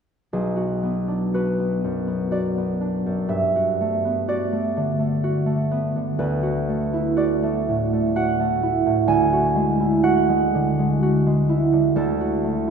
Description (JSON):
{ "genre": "classical, solo harp piece", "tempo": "62 BPM", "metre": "3/4", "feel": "rubato", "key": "B minor", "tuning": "A4 = 440 Hz", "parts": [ { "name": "concert harp", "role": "solo", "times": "0.3-12.7 s", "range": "B1 to G#5", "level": "-19 LUFS", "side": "right 1 dB", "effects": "none" } ], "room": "wet cathedral reverb, RT60 4.5 s", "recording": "recorded in a church or concert hall", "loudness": "-19 LUFS", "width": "side -6 dB against mid", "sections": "0.3-12.7 A section", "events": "none", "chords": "0.3 Bm6; 3.3 Gmaj9; 6.2 D69; 9.1 E9/D; 12.0 Dadd9" }